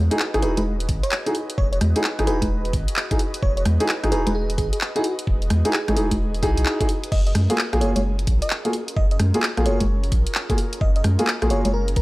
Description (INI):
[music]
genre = UK garage, two-step garage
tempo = 130 BPM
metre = 4/4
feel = swing 64% on 16ths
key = unclear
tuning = A4 = 443 Hz
[part]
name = airy breathy pad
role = sustained chords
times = 0.0-12.0 s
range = C#4 to D#5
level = -35 LUFS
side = equal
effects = chorus, sidechain pumping
[part]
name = soft dub sub bass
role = bass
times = 0.0-12.0 s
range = E1 to F#2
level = -22 LUFS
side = equal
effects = none
[part]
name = dark concert grand piano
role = stabs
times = 0.1-11.7 s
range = A#3 to G#4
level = -24 LUFS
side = equal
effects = none
[part]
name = garage drum kit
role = drums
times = 0.1-12.0 s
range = congas, crash cymbal, handclaps, hi-hat, rim click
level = -25 LUFS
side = equal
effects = studio reverb
[part]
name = bell-like FM electric piano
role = melody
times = 0.4-12.0 s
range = F#4 to D#5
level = -30 LUFS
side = equal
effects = chorus, analog delay
[part]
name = electronic kick drum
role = drums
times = 0.9-12.0 s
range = none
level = -22 LUFS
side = equal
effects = studio reverb
[sound]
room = digital ambience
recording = dry, gritty hardware recording, transformer saturation, vinyl crackle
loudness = -19 LUFS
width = side -20 dB against mid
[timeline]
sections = 0.0-12.0 A section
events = none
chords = 0.0 Emaj9; 7.1 F#maj9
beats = 0.20 0.66 1.12 | 1.58 2.04 2.50 2.96 | 3.43 3.89 4.35 4.81 | 5.27 5.73 6.20 6.66 | 7.12 7.58 8.04 8.50 | 8.96 9.43 9.89 10.35 | 10.81 11.27 11.73